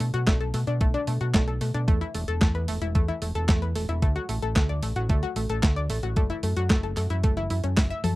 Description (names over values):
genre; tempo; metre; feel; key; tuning
italo disco; 112 BPM; 4/4; straight; B minor; A4 = 439 Hz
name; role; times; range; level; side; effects
analog pluck; arpeggios; 0.0-8.1 s; A3 to E5; -30 LUFS; left 2 dB; chorus, tape echo
overdriven fingered electric bass; bass; 0.0-8.2 s; E1 to B2; -27 LUFS; equal; tube saturation
clean 12-bit digital drum machine; drums; 0.0-8.1 s; handclaps, hi-hat, snare drum, toms; -29 LUFS; equal; none
electronic kick drum; drums; 0.3-7.9 s; none; -23 LUFS; equal; none
room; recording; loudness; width
little or no reverb; dry, close 1970s-style studio recording; -23 LUFS; side -18 dB against mid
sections
0.0-8.2 A section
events
none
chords
0.0 Bm7; 1.9 Esus4; 4.0 D; 6.2 F#m7